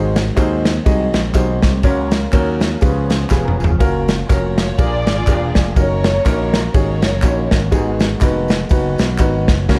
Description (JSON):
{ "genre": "uptempo gospel", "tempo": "122 BPM", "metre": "4/4", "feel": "swing 58% on 8ths", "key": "F# major", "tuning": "A4 = 440 Hz", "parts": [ { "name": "warm grand piano", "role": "accompaniment", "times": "0.0-9.8 s", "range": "G#2 to D#5", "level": "-23 LUFS", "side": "equal", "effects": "none" }, { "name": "tonewheel organ", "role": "sustained chords", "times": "0.0-9.8 s", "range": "C#3 to A#4", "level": "-30 LUFS", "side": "equal", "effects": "none" }, { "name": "slap bass", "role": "bass", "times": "0.0-9.8 s", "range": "E1 to D#2", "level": "-22 LUFS", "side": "equal", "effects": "none" }, { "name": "natural country drum kit", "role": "drums", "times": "0.2-9.8 s", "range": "crash cymbal, kick drum, ride cymbal, snare drum, toms", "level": "-19 LUFS", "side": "equal", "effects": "none" }, { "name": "tambourine and handclaps", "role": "percussion", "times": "0.2-9.6 s", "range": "none", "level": "-36 LUFS", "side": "equal", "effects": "none" }, { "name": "mellow electric guitar", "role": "second line", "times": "3.3-3.9 s", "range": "C#4 to B4", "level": "-30 LUFS", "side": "equal", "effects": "none" }, { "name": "dark studio string section", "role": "melody", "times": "4.3-7.7 s", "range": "E#4 to D5", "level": "-24 LUFS", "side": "equal", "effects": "none" } ], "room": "light reverb", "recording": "dark, warm production", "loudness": "-16 LUFS", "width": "mono", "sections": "0.0-9.8 A section", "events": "drum fill 3.3-3.8", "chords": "0.0 G#7; 1.8 F#/C#; 2.8 C#7; 3.8 F#maj7; 4.8 A#7; 5.8 D#m7/F#; 7.7 G#m7; 8.7 B/F#", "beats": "0.38 0.86 1.35 | 1.84 2.33 2.82 3.31 | 3.80 4.29 4.78 5.27 | 5.76 6.25 6.75 7.24 | 7.73 8.22 8.71 9.20 | 9.69" }